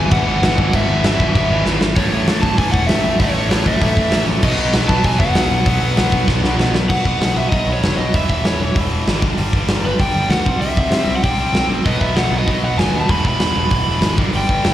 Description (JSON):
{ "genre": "punk rock", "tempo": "194 BPM", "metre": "4/4", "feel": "straight", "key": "unclear", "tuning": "A4 = 440 Hz", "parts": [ { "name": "crunchy overdriven guitar", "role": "melody", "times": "0.0-14.7 s", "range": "B4 to B5", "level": "-21 LUFS", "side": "equal", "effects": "slapback echo" }, { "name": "distorted electric guitar", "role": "riff", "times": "0.0-6.7, 11.8-14.7 s", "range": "E2 to B3", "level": "-24 LUFS", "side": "equal", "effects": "overdrive, slapback echo" }, { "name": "tight distorted guitar", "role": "riff", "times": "0.0-14.7 s", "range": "E2 to C4", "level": "-22 LUFS", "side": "equal", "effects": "distortion, slapback echo" }, { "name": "picked electric bass", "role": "bass", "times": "0.0-14.7 s", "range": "E1 to C3", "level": "-20 LUFS", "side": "equal", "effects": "none" }, { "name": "big rock drum kit", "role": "drums", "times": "0.1-14.7 s", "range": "crash cymbal, hi-hat, kick drum, snare drum", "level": "-18 LUFS", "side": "equal", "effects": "none" } ], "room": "small room ambience", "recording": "live gig heard through the venue's PA, recital hall reverb", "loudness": "-14 LUFS", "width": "side -12 dB against mid", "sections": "0.0-2.0 A section; 2.0-6.9 B section; 6.9-14.7 C section", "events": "drum fill 1.7-2.0, 6.3-6.9", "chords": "0.0 E/G#; 2.0 A; 4.4 B5; 8.1 E; 9.2 G5; 10.5 C; 11.9 B; 13.1 E; 14.2 G5" }